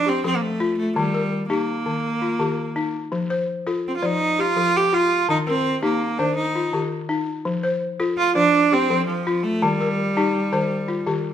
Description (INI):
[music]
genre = west african traditional, West African string and xylophone music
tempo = 111 BPM (dotted quarters)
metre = 12/8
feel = straight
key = F mixolydian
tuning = A4 = 439 Hz
[part]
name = bright cello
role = melody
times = 0.0-11.3 s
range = F3 to G4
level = -21 LUFS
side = right 2 dB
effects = none
[part]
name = balafon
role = arpeggios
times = 0.0-11.3 s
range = Eb3 to D5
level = -23 LUFS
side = left 3 dB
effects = none
[sound]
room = moderate recital hall reverb, RT60 1.5 s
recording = minimal, uncompressed stereo recording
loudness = -19 LUFS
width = side -10 dB against mid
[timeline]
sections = 0.0-11.3 A section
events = none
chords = 0.0 F; 1.0 Eb; 3.1 F; 5.3 Eb; 7.5 F; 9.6 Eb